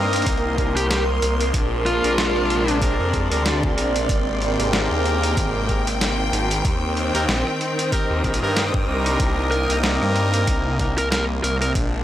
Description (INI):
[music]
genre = glitch hop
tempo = 94 BPM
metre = 4/4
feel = swing 56% on 16ths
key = C minor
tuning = A4 = 440 Hz
[part]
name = clear studio string section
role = sustained chords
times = 0.0-12.0 s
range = C3 to G5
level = -27 LUFS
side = left 2 dB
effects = sidechain pumping
[part]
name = warm horn section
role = stabs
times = 0.0-11.0 s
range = C4 to Bb4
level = -25 LUFS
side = equal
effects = sidechain pumping, tape echo
[part]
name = phased detuned saw bass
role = bass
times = 0.0-12.0 s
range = Ab1 to G2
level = -23 LUFS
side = equal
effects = phaser, tube saturation
[part]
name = granular cloud pad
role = texture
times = 0.0-12.0 s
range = Ab3 to Eb6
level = -27 LUFS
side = right 1 dB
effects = built-in reverb, sidechain pumping
[part]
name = boom bap sampler-style drum kit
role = drums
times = 0.1-11.9 s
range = hi-hat, rim click, snare drum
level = -26 LUFS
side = equal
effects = studio reverb
[part]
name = electronic kick drum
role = drums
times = 0.3-11.9 s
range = none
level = -24 LUFS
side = equal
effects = overdrive, studio reverb
[part]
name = dark smooth lead guitar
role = melody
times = 0.8-2.8, 9.5-11.7 s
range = F4 to Bb4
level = -25 LUFS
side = equal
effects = overdrive, tape echo
[sound]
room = light reverb, digital ambience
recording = dry, gritty hardware recording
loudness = -18 LUFS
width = side -12 dB against mid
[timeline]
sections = 0.0-12.0 A section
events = none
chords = 0.0 Cm9; 1.5 Bb9; 4.1 Abmaj9; 6.6 Eb6; 9.2 Cm9